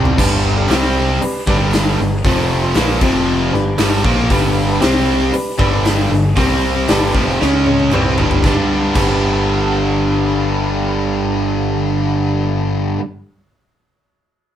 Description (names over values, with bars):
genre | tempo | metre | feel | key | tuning
classic rock | 116 BPM | 4/4 | straight | G major | A4 = 442 Hz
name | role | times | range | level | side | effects
biting overdriven guitar | riff | 0.0-13.0 s | F2 to C#4 | -19 LUFS | equal | none
cranked stack guitar | riff | 0.0-13.0 s | F2 to C#4 | -21 LUFS | right 3 dB | overdrive
tight distorted guitar | riff | 0.0-13.0 s | F2 to D4 | -22 LUFS | left 5 dB | distortion
growling picked electric bass | bass | 0.0-12.9 s | F1 to C#2 | -20 LUFS | equal | overdrive
big rock drum kit | drums | 0.1-9.1 s | crash cymbal, hi-hat, kick drum, snare drum, toms | -19 LUFS | equal | none
barky reed electric piano | accompaniment | 0.2-13.0 s | C4 to C#5 | -22 LUFS | left 2 dB | overdrive, spring reverb
group handclap | percussion | 0.7-9.1 s | none | -32 LUFS | right 3 dB | none
room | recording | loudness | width
moderate small room reverb, RT60 0.5 s | band playing live in one room | -13 LUFS | side -10 dB against mid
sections
0.2-8.4 A section; 8.4-12.6 B section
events
drum fill 0.0, 7.4-8.4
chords
0.2 G; 0.7 C5; 1.2 G; 2.2 F5; 2.8 G; 3.0 F5; 3.5 G; 4.8 C5; 5.3 G; 6.4 C5; 6.9 G; 7.4 C#5; 7.9 G